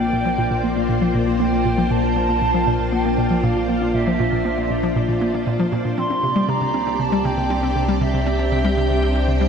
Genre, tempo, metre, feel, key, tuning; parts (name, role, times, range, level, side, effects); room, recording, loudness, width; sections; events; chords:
ambient, sequencer-driven space music; 118 BPM; 4/4; straight; Bb lydian; A4 = 440 Hz
mellow hollow wooden flute; melody; 0.0-9.5 s; D5 to C6; -24 LUFS; right 2 dB; shimmer reverb, analog delay
string machine, full ensemble; sustained chords; 0.0-9.5 s; Bb3 to G5; -22 LUFS; left 1 dB; ensemble chorus, shimmer reverb
hollow square pluck; riff; 0.0-9.5 s; Bb2 to C4; -22 LUFS; equal; chorus, analog delay
round analog bass; bass; 0.0-9.5 s; Bb1 to C2; -25 LUFS; equal
wind-like tuned noise texture; texture; 0.3-9.5 s; D4 to D5; -32 LUFS; left 2 dB; built-in reverb, shimmer reverb
wet cathedral reverb, RT60 6.6 s; in a vast, echoing space; -17 LUFS; side -6 dB against mid
0.0-9.5 A section
0.0 Bb6; 6.0 C